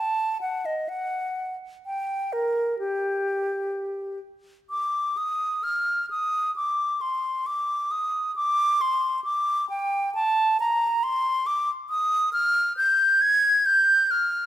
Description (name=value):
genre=classical, baroque-style fantasia for unaccompanied flute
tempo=61-69 BPM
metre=4/4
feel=rubato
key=G minor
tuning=A4 = 441 Hz
part: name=concert flute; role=solo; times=0.0-14.5 s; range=G4 to Ab6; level=-22 LUFS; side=equal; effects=none
room=moderate scoring stage reverb, RT60 1.8 s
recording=none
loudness=-22 LUFS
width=side -12 dB against mid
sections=0.0-4.7 A section; 4.7-14.5 B section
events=none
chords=none